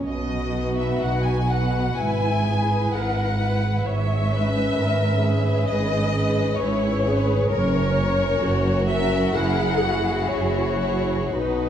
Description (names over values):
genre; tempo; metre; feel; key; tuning
classical, slow romantic movement for string orchestra; 64 BPM; 4/4; rubato; unclear; A4 = 440 Hz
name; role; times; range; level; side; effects
rich chamber violin section; melody; 0.0-11.7 s; B4 to G#5; -26 LUFS; left 2 dB; none
rich chamber violin section; second line; 0.0-11.7 s; C#4 to B4; -27 LUFS; left 2 dB; none
rich chamber viola section; accompaniment; 0.0-11.7 s; D#4 to C#5; -29 LUFS; equal; none
dark symphonic cello section; bass; 0.0-11.7 s; F#2 to B2; -27 LUFS; right 2 dB; none
warm chamber double bass section; bass; 0.0-11.7 s; F#1 to B1; -25 LUFS; right 2 dB; none
room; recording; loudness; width
wet recital hall reverb, RT60 1.5 s; dark, warm production; -20 LUFS; side -9 dB against mid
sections
0.0-11.7 A section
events
none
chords
0.0 B; 2.0 E/G#; 3.8 C#m7/G#; 7.5 F#